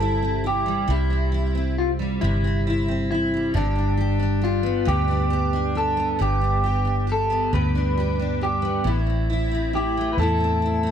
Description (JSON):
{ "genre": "six-eight pop ballad", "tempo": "45 BPM (dotted quarters)", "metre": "6/8", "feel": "straight", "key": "C major", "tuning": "A4 = 441 Hz", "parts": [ { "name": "electric guitar at the edge of break-up", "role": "melody", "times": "0.0-10.9 s", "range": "D4 to B4", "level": "-25 LUFS", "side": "equal", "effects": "lush chorus" }, { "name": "picked steel-string acoustic guitar", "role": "accompaniment", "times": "0.0-10.9 s", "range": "G2 to G4", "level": "-25 LUFS", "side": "equal", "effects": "double-tracked left and right" }, { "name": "vintage muted fingered electric bass", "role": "bass", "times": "0.0-10.9 s", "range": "G1 to E2", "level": "-24 LUFS", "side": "equal", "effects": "none" } ], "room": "light reverb", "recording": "none", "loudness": "-20 LUFS", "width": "side -8 dB against mid", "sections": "0.0-10.9 A section", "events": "none", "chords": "0.0 C; 3.5 G; 8.9 Am", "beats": "| 0.89 2.22 | 3.55 4.88 | 6.20 7.53 | 8.86 10.19" }